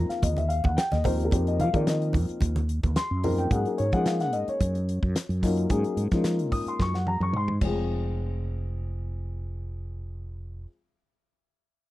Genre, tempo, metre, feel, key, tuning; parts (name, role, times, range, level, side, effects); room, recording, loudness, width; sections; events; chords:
electric jazz fusion; 110 BPM; 4/4; swing 53% on 16ths; F phrygian; A4 = 437 Hz
dark baby grand piano; accompaniment; 0.0-10.7 s; F3 to Eb6; -28 LUFS; left 2 dB
mellow fretless electric bass; bass; 0.0-10.6 s; F1 to F3; -27 LUFS; equal
damped 70s drum kit; drums; 0.1-7.8 s; crash cymbal, hi-hat, kick drum, snare drum, toms; -28 LUFS; equal
congas; percussion; 0.2-3.4 s; -34 LUFS; right 3 dB
studio reverb; dry, close 1970s-style studio recording; -24 LUFS; side -16 dB against mid
0.0-7.9 A section; 7.9-11.9 B section
drum fill 6.8-7.9
0.0 F9sus4; 3.5 Ab9sus4; 7.6 Fm